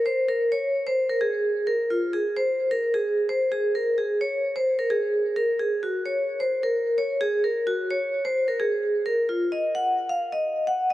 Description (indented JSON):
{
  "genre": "hip hop",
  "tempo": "130 BPM",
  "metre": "4/4",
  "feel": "half-time",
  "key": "Bb minor",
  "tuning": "A4 = 439 Hz",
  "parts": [
    { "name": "vibraphone with medium hard mallets", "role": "solo", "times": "0.0-10.9 s", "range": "F4 to Gb5", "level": "-22 LUFS", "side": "equal", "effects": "ping-pong delay" }
  ],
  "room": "light reverb, studio ambience",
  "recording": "none",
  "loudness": "-22 LUFS",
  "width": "side -14 dB against mid",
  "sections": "0.0-10.9 A section",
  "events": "none",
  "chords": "none"
}